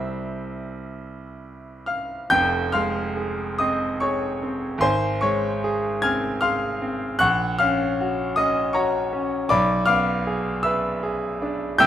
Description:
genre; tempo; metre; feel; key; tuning
classical, romantic character piece for solo piano; 42-54 BPM (dotted quarters); 6/8; rubato; F minor; A4 = 440 Hz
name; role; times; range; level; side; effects
bright concert grand piano; solo; 0.0-11.9 s; F1 to Ab6; -21 LUFS; equal; none
room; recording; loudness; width
moderate recital hall reverb, RT60 1.7 s; close, detailed microphones; -21 LUFS; side -11 dB against mid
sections
0.0-2.3 A section; 2.3-11.9 B section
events
none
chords
0.0 C; 2.3 Fm; 4.8 Fm/Ab; 7.2 Gb/Bb; 9.5 Bdim7

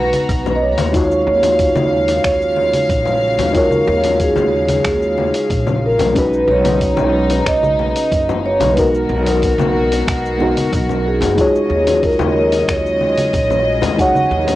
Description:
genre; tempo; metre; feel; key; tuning
sunset chillout; 92 BPM; 4/4; straight; Eb minor; A4 = 440 Hz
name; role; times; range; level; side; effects
vibraphone with medium mallets; melody; 0.0-14.6 s; Ab4 to Gb5; -17 LUFS; right 1 dB; analog delay
mellow FM electric piano; accompaniment; 0.0-14.6 s; Ab3 to Db5; -18 LUFS; equal; chorus, auto-pan, cassette tape, tape echo
clear studio string section; sustained chords; 0.0-14.6 s; Cb3 to Bb5; -23 LUFS; left 1 dB; cassette tape
upright bass; bass; 0.0-14.6 s; F#1 to Eb2; -22 LUFS; equal; none
dusty soul sampler-style drum kit; drums; 0.1-14.6 s; cabasa, congas, finger snaps, hi-hat; -25 LUFS; equal; cassette tape
electronic kick drum; drums; 0.3-14.1 s; none; -22 LUFS; equal; cassette tape
congas and bongos; percussion; 0.5-14.6 s; none; -25 LUFS; left 7 dB; none
room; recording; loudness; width
light reverb; home recording on cassette; -13 LUFS; side -15 dB against mid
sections
0.0-14.6 A section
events
none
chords
0.0 Abm9/Cb; 0.9 Ebm11; 6.2 B69; 8.8 Abm9/Cb; 11.4 Ebm11

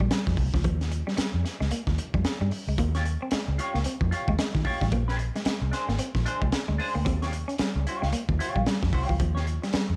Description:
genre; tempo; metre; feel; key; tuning
funk; 112 BPM; 4/4; swing 60% on 16ths; unclear; A4 = 440 Hz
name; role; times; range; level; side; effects
semi-hollow electric guitar; riff; 0.0-9.8 s; F3 to Db4; -35 LUFS; equal; spring reverb
vintage muted fingered electric bass; bass; 0.0-10.0 s; Ab1 to Eb3; -30 LUFS; equal; none
crunchy breakbeat drum kit; drums; 0.0-9.9 s; hi-hat, kick drum, snare drum; -32 LUFS; equal; none
semi-hollow electric guitar; accompaniment; 2.8-9.9 s; D4 to Db5; -36 LUFS; equal; wah
room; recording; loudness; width
light reverb; none; -27 LUFS; mono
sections
0.0-10.0 A section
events
break 0.0-2.8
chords
0.0 Eb9; 4.9 Bb9; 7.1 Eb9

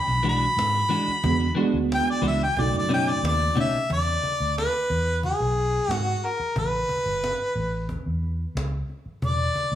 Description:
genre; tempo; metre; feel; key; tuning
straight-eighth soul blues; 90 BPM; 4/4; straight; E mixolydian; A4 = 440 Hz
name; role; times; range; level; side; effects
clear harmonica; melody; 0.0-9.8 s; G#4 to B5; -24 LUFS; left 1 dB; overdrive
vintage muted fingered electric bass; bass; 0.1-9.8 s; E1 to G#2; -27 LUFS; equal; none
clean electric guitar; stabs; 0.2-3.8 s; B2 to F#4; -28 LUFS; left 2 dB; analog chorus, tape echo
cajon; drums; 0.2-9.7 s; none; -34 LUFS; equal; none
reed electric piano; accompaniment; 1.2-3.6 s; C#3 to F#4; -26 LUFS; right 7 dB; fast tremolo
room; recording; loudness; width
light reverb, small room ambience; studio ambience; -22 LUFS; side -11 dB against mid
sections
0.0-3.9 A section; 3.9-9.8 B section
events
harmonica solo 0.0-3.9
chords
0.0 E9; 2.6 B9; 3.9 E7; 6.6 A9; 9.2 E7(no3)

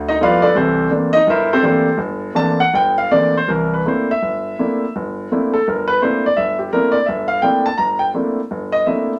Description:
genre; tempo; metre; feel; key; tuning
solo jazz; 168 BPM; 4/4; swing 65% on 8ths, rubato; C mixolydian; A4 = 440 Hz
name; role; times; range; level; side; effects
warm concert grand piano; solo; 0.0-9.2 s; G1 to Bb5; -17 LUFS; equal; none
room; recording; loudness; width
wet small room reverb, RT60 0.5 s; none; -17 LUFS; mono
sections
0.0-3.5 A section; 3.5-9.2 A section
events
grand piano solo 0.0-9.2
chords
0.0 G13; 0.6 C13

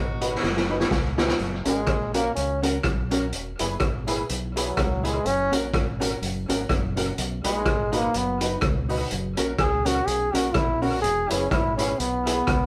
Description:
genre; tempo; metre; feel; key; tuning
ska; 124 BPM; 4/4; swing 56% on 8ths; F# mixolydian; A4 = 440 Hz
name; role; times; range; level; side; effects
clear horn section; melody; 0.0-0.9 s; D#4 to F#4; -40 LUFS; equal; none
fingered electric bass; bass; 0.0-12.7 s; E1 to C#2; -33 LUFS; equal; none
semi-hollow electric guitar; accompaniment; 0.2-12.4 s; C#4 to B4; -37 LUFS; equal; spring reverb
tack piano; stabs; 0.2-12.4 s; C#4 to B4; -32 LUFS; equal; none
raw garage drum kit; drums; 0.2-12.6 s; hi-hat, kick drum, rim click, snare drum; -28 LUFS; equal; none
bright trombone; melody; 1.7-12.7 s; F#3 to G#4; -27 LUFS; equal; none
room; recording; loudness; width
moderate stone room reverb, RT60 1.1 s; band playing live in one room; -24 LUFS; mono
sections
0.0-1.4 A section; 1.4-12.7 B section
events
drum fill 0.4-1.4; trombone solo 1.4-12.7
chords
0.0 B; 1.4 F#; 3.3 E; 5.3 F#; 7.2 B; 9.1 F#; 11.0 E

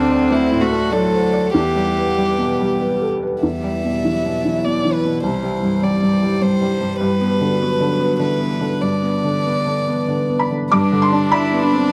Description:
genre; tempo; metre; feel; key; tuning
neoclassical piano and strings; 94-103 BPM; 3/4; rubato; E minor; A4 = 439 Hz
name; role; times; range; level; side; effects
warm violin; melody; 0.0-11.9 s; D4 to E5; -24 LUFS; equal; slapback echo
rich cello; second line; 0.0-11.9 s; D3 to E4; -26 LUFS; equal; none
felt-muted upright piano; accompaniment; 0.0-11.9 s; C2 to D6; -21 LUFS; equal; none
warbly tape-like pad; sustained chords; 0.0-11.9 s; E3 to F#5; -30 LUFS; equal; chorus, built-in reverb
room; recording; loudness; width
small room ambience; dry, close 1970s-style studio recording; -18 LUFS; mono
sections
0.0-3.4 A section; 3.4-10.7 B section; 10.7-11.9 C section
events
none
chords
0.0 D7; 1.5 Emadd9; 3.4 Em7; 5.2 C; 7.0 Gmaj7; 8.8 Em7/G; 10.7 G

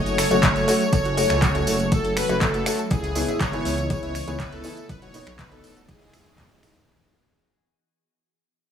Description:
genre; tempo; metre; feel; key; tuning
progressive house; 121 BPM; 4/4; straight; F# dorian; A4 = 440 Hz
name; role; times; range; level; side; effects
soft supersaw; melody; 0.0-6.6 s; G#4 to C#5; -27 LUFS; left 1 dB; sidechain pumping, digital delay
evolving wavetable pad; sustained chords; 0.1-6.9 s; C#3 to D#5; -32 LUFS; right 2 dB; phaser, built-in reverb, sidechain pumping
felt-muted upright piano; stabs; 0.0-6.7 s; G#3 to D#5; -26 LUFS; left 1 dB; sidechain pumping, digital delay
dark detuned saw bass; bass; 0.1-6.8 s; D#1 to C#2; -28 LUFS; equal; sidechain pumping
deep house drum kit; drums; 0.1-6.9 s; finger snaps, handclaps, hi-hat; -27 LUFS; equal; overdrive, sidechain pumping on hats
tambourine; percussion; 0.1-6.9 s; none; -34 LUFS; right 2 dB; none
soft round pluck; arpeggios; 0.2-6.7 s; D#4 to A5; -34 LUFS; equal; chorus, sidechain pumping, digital delay
electronic kick drum; drums; 0.4-6.5 s; none; -24 LUFS; equal; overdrive
room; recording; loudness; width
light reverb; none; -19 LUFS; side -8 dB against mid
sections
0.0-6.9 A section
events
drop 0.0-6.9; fade-out 0.0-6.9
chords
0.0 F#m; 2.9 C#m7; 4.9 Badd9/D#; 5.9 Emaj7

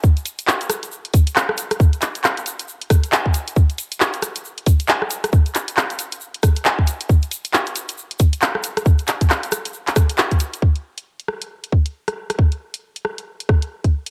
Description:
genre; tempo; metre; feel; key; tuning
UK garage; 136 BPM; 4/4; swing 60% on 16ths; none; none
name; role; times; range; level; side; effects
electronic kick drum; drums; 0.0-13.9 s; none; -16 LUFS; equal; cassette tape
egg shaker; percussion; 0.0-10.6 s; none; -34 LUFS; equal; none
garage drum kit; drums; 0.2-14.1 s; handclaps, hi-hat, rim click; -23 LUFS; equal; cassette tape
room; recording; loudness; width
moderate spring reverb, RT60 1.4 s; home recording on cassette; -19 LUFS; mono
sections
0.0-10.6 A section; 10.6-14.1 B section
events
none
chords
none

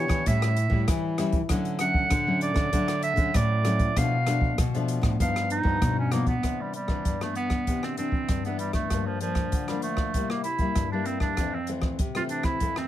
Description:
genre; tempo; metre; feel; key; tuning
samba and choro; 97 BPM; 4/4; straight; C major from 6.4 s; A4 = 439 Hz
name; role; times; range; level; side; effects
bright clarinet; melody; 0.0-12.9 s; F3 to F#5; -29 LUFS; right 3 dB; plate reverb
nylon-string guitar; accompaniment; 0.0-12.9 s; F2 to G4; -30 LUFS; left 4 dB; none
nylon-string guitar; bass; 0.0-6.3 s; G2 to E3; -27 LUFS; equal; none
open jazz drum kit; drums; 0.1-12.9 s; hi-hat, kick drum, rim click; -28 LUFS; equal; none
room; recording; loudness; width
little or no reverb; close, detailed microphones; -23 LUFS; side -12 dB against mid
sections
0.0-6.4 A section; 6.4-12.9 B section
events
clarinet solo 0.0-6.4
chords
0.3 A7; 1.5 Dmaj7; 4.0 Bm7b5; 5.2 Gaug7; 6.4 Cmaj9; 8.9 Gm7; 10.1 C7; 11.4 Fmaj7

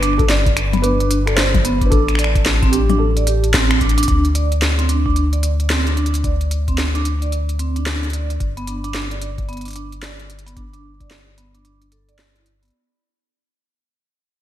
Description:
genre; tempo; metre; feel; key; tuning
IDM; 111 BPM; 4/4; swing 62% on 16ths; unclear; A4 = 441 Hz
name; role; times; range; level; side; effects
felt-muted upright piano; melody; 0.0-3.8 s; G4 to D5; -24 LUFS; left 1 dB; digital delay
vibraphone with soft mallets; arpeggios; 0.0-12.7 s; B3 to D5; -23 LUFS; right 3 dB; low-pass filter, ping-pong delay
round analog bass; bass; 0.0-12.7 s; G1 to D2; -19 LUFS; equal; none
industrial drum kit; drums; 0.0-12.7 s; finger snaps, hi-hat, snare drum, toms; -21 LUFS; left 1 dB; gated reverb, ping-pong delay
electronic kick drum; drums; 0.2-11.1 s; none; -20 LUFS; equal; overdrive
room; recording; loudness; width
light reverb, digital ambience; bright 1980s-style digital production; -15 LUFS; side -12 dB against mid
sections
0.0-4.1 A section; 4.1-12.7 B section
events
drum fill 3.8; fade-out 4.1-12.7; filter sweep on vibraphone 4.1-12.7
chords
0.0 G; 1.9 Am; 4.1 N.C.; 8.4 G5

